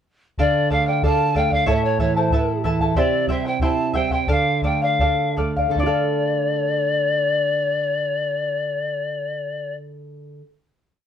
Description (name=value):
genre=andean folk, Andean ensemble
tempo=74-93 BPM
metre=2/4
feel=straight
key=D minor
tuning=A4 = 440 Hz
part: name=breathy bright polished pan flute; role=melody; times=0.4-9.8 s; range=C5 to A5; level=-22 LUFS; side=left 1 dB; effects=none
part: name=charango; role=accompaniment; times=0.4-10.5 s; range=E4 to A5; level=-23 LUFS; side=left 2 dB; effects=none
part: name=nylon-string guitar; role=accompaniment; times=0.4-10.5 s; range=A2 to A4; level=-24 LUFS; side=right 3 dB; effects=none
part: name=bombo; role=percussion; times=0.4-6.1 s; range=none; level=-24 LUFS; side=equal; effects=none
room=moderate studio reverb, RT60 0.6 s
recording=band playing live in one room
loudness=-18 LUFS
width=side -8 dB against mid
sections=0.4-5.8 A section; 5.8-9.0 final chord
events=slowing down 3.0-5.8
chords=0.4 Dm; 1.7 A; 3.0 C; 4.3 Dm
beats=| 0.39 1.03 | 1.67 2.31 | 2.96 3.61 | 4.29 5.00 | 5.77 6.57 | 7.38 8.18